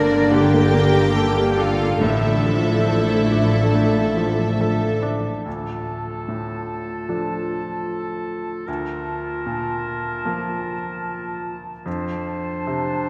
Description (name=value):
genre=cinematic, emotional film score for orchestra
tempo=69-77 BPM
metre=4/4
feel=rubato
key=D minor from 5.5 s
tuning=A4 = 440 Hz
part: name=rich studio violin section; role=melody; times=0.0-5.0 s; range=D5 to G5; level=-31 LUFS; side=equal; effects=none
part: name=warm studio violin section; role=second line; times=0.0-5.0 s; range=D4 to G4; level=-27 LUFS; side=equal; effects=none
part: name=bright baby grand piano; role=accompaniment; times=0.0-13.1 s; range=D2 to Bb4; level=-28 LUFS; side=equal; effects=none
part: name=warm studio viola section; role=accompaniment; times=0.0-5.2 s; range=D3 to Bb3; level=-27 LUFS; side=equal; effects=none
part: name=mellow French horn section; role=sustained chords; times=0.0-5.1 s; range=D3 to D4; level=-28 LUFS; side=equal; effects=none
part: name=dark studio double bass section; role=bass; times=0.0-5.2 s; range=G1 to A1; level=-25 LUFS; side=equal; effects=none
part: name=warm studio cello section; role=bass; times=0.0-5.0 s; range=G4 to Bb4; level=-29 LUFS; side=equal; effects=none
part: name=clear oboe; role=second line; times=5.5-13.1 s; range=A4 to C5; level=-34 LUFS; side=equal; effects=none
part: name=large flute ensemble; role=second line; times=5.5-13.1 s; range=A5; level=-35 LUFS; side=equal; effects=none
part: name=warm clarinet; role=second line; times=5.5-13.1 s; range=D4 to F4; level=-34 LUFS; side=equal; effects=none
room=wet church reverb, RT60 3.7 s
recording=none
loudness=-21 LUFS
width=mono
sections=0.0-5.5 A section; 5.5-13.1 B section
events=none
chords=0.0 Gmadd9; 2.0 Dmadd9/A; 5.5 Dm; 8.7 Bbmaj7/D; 11.9 F6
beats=0.33 1.17 | 2.03 2.89 3.75 4.60 | 5.46 6.28 7.09 7.88 | 8.68 9.46 10.25 11.06 | 11.86 12.67